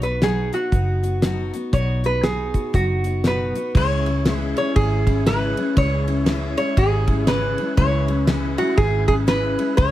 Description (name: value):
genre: honky-tonk and classic country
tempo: 119 BPM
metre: 4/4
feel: swing 61% on 8ths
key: unclear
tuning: A4 = 441 Hz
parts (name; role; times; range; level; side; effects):
- lap resonator guitar; melody; 0.0-9.9 s; F#4 to C#5; -23 LUFS; right 1 dB; none
- picked steel-string acoustic guitar; accompaniment; 0.0-9.9 s; B2 to F#4; -25 LUFS; left 3 dB; none
- vintage muted fingered electric bass; bass; 0.0-9.9 s; F#1 to C#2; -22 LUFS; equal; none
- damped 70s drum kit; drums; 0.0-9.9 s; crash cymbal, hi-hat, kick drum, ride cymbal, snare drum; -21 LUFS; equal; none
- tonewheel organ; accompaniment; 3.7-9.9 s; E4 to C#5; -33 LUFS; right 4 dB; slow rotary speaker, overdrive
room: light reverb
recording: none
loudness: -18 LUFS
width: side -14 dB against mid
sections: 0.0-3.8 A section; 3.8-9.9 B section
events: none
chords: 0.0 B; 3.8 C#m